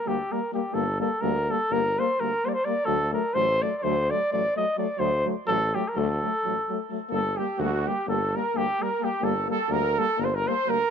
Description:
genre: balkan folk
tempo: 255 BPM (eighths)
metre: 9/8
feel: straight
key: G harmonic minor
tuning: A4 = 440 Hz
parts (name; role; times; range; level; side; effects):
- warm flugelhorn; melody; 0.0-10.9 s; F#4 to Eb5; -26 LUFS; equal; tape echo
- warm French horn; accompaniment; 0.1-10.8 s; A3 to Bb3; -31 LUFS; left 15 dB; none
- warm euphonium; accompaniment; 0.1-10.8 s; F#3 to G3; -34 LUFS; right 14 dB; none
- breathy tuba; bass; 0.1-10.8 s; G1 to D2; -30 LUFS; left 1 dB; none
- warm trumpet; second line; 7.1-10.9 s; F#4 to C5; -30 LUFS; right 13 dB; none
room: light reverb, small room ambience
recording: 1960s-style stereo with parts hard left and right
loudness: -23 LUFS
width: side -7 dB against mid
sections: 0.0-10.9 A section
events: none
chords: 0.0 Gm; 2.9 D; 7.1 Gm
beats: 0.02 0.26 0.49 | 0.73 0.97 1.21 1.44 1.68 1.92 2.15 2.39 2.63 | 2.86 3.10 3.34 3.57 3.81 4.04 4.28 4.52 4.75 | 4.99 5.22 5.46 5.70 5.93 6.17 6.40 6.64 6.87 | 7.11 7.34 7.58 7.81 8.04 8.28 8.51 8.75 8.98 | 9.22 9.45 9.69 9.92 10.15 10.39 10.62 10.86

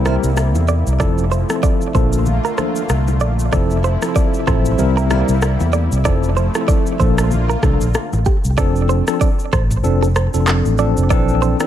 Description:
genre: afrobeats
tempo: 95 BPM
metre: 4/4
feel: swing 58% on 16ths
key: F major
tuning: A4 = 439 Hz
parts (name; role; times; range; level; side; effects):
- tine electric piano; accompaniment; 0.0-11.7 s; E3 to Bb4; -21 LUFS; left 1 dB; medium stereo tremolo, tape echo
- lush unison pad; sustained chords; 0.0-8.6 s; C3 to F4; -25 LUFS; equal; chorus, sidechain pumping
- direct-recorded clean electric guitar; riff; 0.0-11.5 s; G4 to D5; -24 LUFS; right 8 dB; tape echo
- fingered electric bass; bass; 0.0-11.5 s; F1 to E2; -17 LUFS; equal; none
- afro-pop drum kit; drums; 0.1-11.7 s; handclaps, kick drum, rim click, shaker, toms; -19 LUFS; equal; none
- bongos and congas; percussion; 0.1-8.4 s; none; -29 LUFS; left 7 dB; none
room: digital ambience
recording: echo-heavy mix, faint mains hum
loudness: -14 LUFS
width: side -11 dB against mid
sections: 0.0-8.6 A section; 8.6-11.7 B section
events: none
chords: 0.0 C7; 1.0 Fmaj7; 1.9 Bbmaj7; 3.5 Fmaj7; 4.8 C7; 6.1 Fmaj7; 7.0 Bbmaj7; 8.6 F6; 11.1 Bbmaj9#11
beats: 0.37 | 1.00 1.63 2.26 2.90 | 3.53 4.16 4.79 5.42 | 6.05 6.68 7.32 7.95 | 8.58 9.21 9.84 10.47 | 11.11

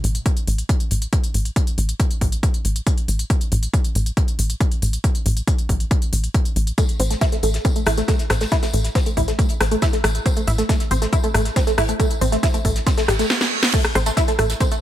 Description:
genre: driving peak-time techno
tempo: 138 BPM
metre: 4/4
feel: straight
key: A minor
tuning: A4 = 441 Hz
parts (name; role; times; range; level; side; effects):
- tight sequencer bass; bass; 0.0-14.5 s; A1; -20 LUFS; equal; tube saturation, sidechain pumping
- techno drum kit; drums; 0.0-14.8 s; crash cymbal, hi-hat, rim click, snare drum, tambourine; -25 LUFS; equal; none
- electronic kick drum; drums; 0.3-14.7 s; none; -19 LUFS; equal; none
- tight sequenced synth; riff; 6.8-14.8 s; G3 to E4; -23 LUFS; equal; chorus, phaser, sidechain pumping, tape echo
- damped 70s drum kit; drums; 6.8-14.7 s; hi-hat, snare drum, tambourine; -33 LUFS; left 2 dB; high-pass filter on hats, high-pass filter on snare, high-pass filter on perc, high-pass filter on room
- reverse cymbal; sound effects; 13.0-13.7 s; none; -25 LUFS; right 5 dB; none
room: digital ambience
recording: none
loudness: -17 LUFS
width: side -12 dB against mid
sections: 0.0-13.7 A section; 13.7-14.8 B section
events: reverse cymbal 13.0-13.7; drum fill 13.3-13.7; drop 13.7-14.8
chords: none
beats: 0.26 0.69 1.13 | 1.56 2.00 2.43 2.87 | 3.30 3.74 4.17 4.61 | 5.04 5.47 5.91 6.34 | 6.78 7.21 7.65 8.08 | 8.52 8.95 9.39 9.82 | 10.26 10.69 11.13 11.56 | 12.00 12.43 12.87 13.30 | 13.74 14.17 14.61

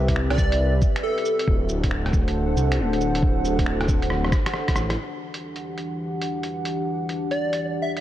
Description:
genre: future garage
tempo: 137 BPM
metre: 4/4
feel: swing 65% on 16ths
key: E minor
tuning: A4 = 440 Hz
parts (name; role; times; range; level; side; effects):
- dark analog pad; sustained chords; 0.0-8.0 s; E3 to F#5; -27 LUFS; equal; chorus, sidechain pumping
- dark detuned saw bass; bass; 0.0-5.0 s; D1 to C2; -23 LUFS; equal; sidechain pumping
- electronic kick drum; drums; 0.1-4.7 s; none; -22 LUFS; equal; vintage 12-bit sampler grit
- lo-fi sampler-style drum kit; drums; 0.1-8.0 s; cabasa, finger snaps, hi-hat, rim click; -30 LUFS; equal; vintage 12-bit sampler grit
- plucky unison lead; melody; 0.3-1.5, 7.3-8.0 s; A4 to E5; -26 LUFS; right 1 dB; cassette tape, analog delay
room: light reverb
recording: none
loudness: -21 LUFS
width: side -12 dB against mid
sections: 0.0-5.0 A section; 5.0-8.0 B section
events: drum fill 4.1-5.0; band accent 4.9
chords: 0.0 Cmaj7; 1.5 D7; 5.0 Em9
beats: 0.16 0.60 1.04 | 1.48 1.91 2.35 2.79 | 3.23 3.67 4.10 4.54 | 4.98 5.42 5.86 6.29 | 6.73 7.17 7.61

